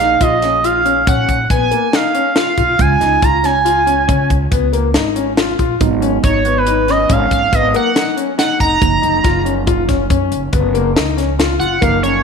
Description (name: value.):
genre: progressive instrumental, band music in an uneven meter.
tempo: 140 BPM.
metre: 7/4.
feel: straight.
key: unclear.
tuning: A4 = 440 Hz.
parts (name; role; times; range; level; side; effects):
sync lead; melody; 0.0-12.2 s; B4 to A#5; -15 LUFS; right 4 dB; chorus.
mellow tine electric piano; accompaniment; 0.0-12.2 s; E#3 to G#4; -23 LUFS; right 11 dB; none.
clear concert grand piano; arpeggios; 0.0-12.2 s; A#3 to E#4; -18 LUFS; left 8 dB; none.
upright bass; bass; 0.0-12.2 s; E#1 to C#3; -20 LUFS; equal; none.
crisp fusion drum kit; drums; 0.2-12.1 s; hi-hat, kick drum, snare drum; -18 LUFS; equal; none.
room: moderate echo chamber reverb, RT60 1.4 s, small room ambience.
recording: 1960s-style stereo with parts hard left and right.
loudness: -12 LUFS.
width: side -6 dB against mid.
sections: 0.0-11.8 A section.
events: none.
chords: 0.0 A#m7; 2.8 C#; 5.8 G#m; 8.8 F#maj7.